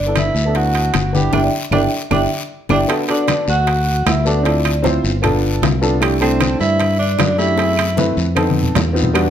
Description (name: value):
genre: Afro-Cuban jazz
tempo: 154 BPM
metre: 4/4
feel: straight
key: G major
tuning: A4 = 439 Hz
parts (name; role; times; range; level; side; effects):
- vibraphone with soft mallets; melody; 0.0-8.1 s; C5 to G5; -21 LUFS; equal; none
- mellow tenor saxophone; second line; 0.0-8.1 s; C4 to G4; -23 LUFS; right 3 dB; none
- fingered electric bass; bass; 0.0-9.3 s; G1 to G2; -19 LUFS; equal; none
- warm upright piano; accompaniment; 0.1-9.3 s; G3 to C5; -20 LUFS; equal; none
- bongos; percussion; 0.2-9.3 s; none; -28 LUFS; left 8 dB; none
- claves; percussion; 0.2-9.3 s; none; -29 LUFS; right 8 dB; none
- congas; percussion; 0.2-9.3 s; none; -23 LUFS; left 4 dB; none
- guiro; percussion; 0.2-9.3 s; none; -30 LUFS; left 6 dB; none
- timbales; percussion; 0.2-9.3 s; none; -23 LUFS; right 7 dB; none
room: moderate large studio reverb, RT60 0.9 s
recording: none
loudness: -14 LUFS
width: side -9 dB against mid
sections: 0.0-2.9 A section; 2.9-9.3 B section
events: drum fill 1.3-2.9, 8.4-9.2; band accent 1.3-2.9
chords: 0.0 G69; 2.9 Bm7; 4.5 Dm7; 5.2 G7; 6.0 C6; 7.6 F#m7b5; 8.4 F7#11